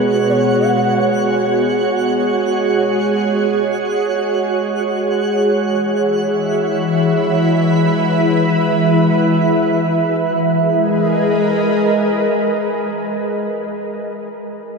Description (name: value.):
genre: ambient.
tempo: free time.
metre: none.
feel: none.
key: G# minor.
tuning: A4 = 439 Hz.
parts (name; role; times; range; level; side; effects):
ethereal airy pad; sustained chords; 0.0-13.3 s; B2 to B5; -16 LUFS; right 1 dB; ensemble chorus, built-in reverb.
analog drone; drone; 0.0-13.4 s; G#3 to G#4; -20 LUFS; equal; chorus.
twinkling granular texture; texture; 0.0-10.3 s; F#4 to F#5; -26 LUFS; right 2 dB; built-in reverb.
reedy long shakuhachi; melody; 0.3-1.0 s; C#5 to F#5; -25 LUFS; left 1 dB; ping-pong delay.
room: wet huge ambient reverb, RT60 8.3 s.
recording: in a vast, echoing space.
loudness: -14 LUFS.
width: side -4 dB against mid.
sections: 0.0-10.2 A section; 10.2-12.5 B section.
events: fade-in on synth texture 0.0-10.2.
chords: 0.0 Bsus2; 1.0 F#sus2; 5.6 E5; 10.2 G#madd9.